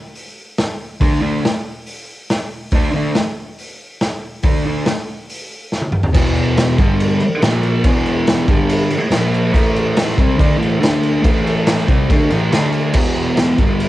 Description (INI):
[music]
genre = garage rock duo or trio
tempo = 141 BPM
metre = 4/4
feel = straight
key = unclear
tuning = A4 = 444 Hz
[part]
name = raw garage drum kit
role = drums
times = 0.2-13.9 s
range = crash cymbal, hi-hat, kick drum, snare drum, toms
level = -17 LUFS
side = equal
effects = cassette tape
[part]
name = thick fuzz guitar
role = riff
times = 1.0-13.9 s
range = E2 to D4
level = -16 LUFS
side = equal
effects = distortion, cassette tape
[sound]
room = small room ambience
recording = home recording on cassette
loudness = -14 LUFS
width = side -15 dB against mid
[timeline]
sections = 0.0-6.1 A section; 6.1-12.9 B section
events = drum fill 5.7-6.1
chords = 0.0 D5; 6.1 E5; 6.8 G5; 7.2 N.C.; 7.4 A#5; 7.8 E5; 8.5 G5; 8.9 N.C.; 9.1 A#5; 9.5 A5; 10.8 D5; 11.2 A5; 12.5 D5; 12.9 E5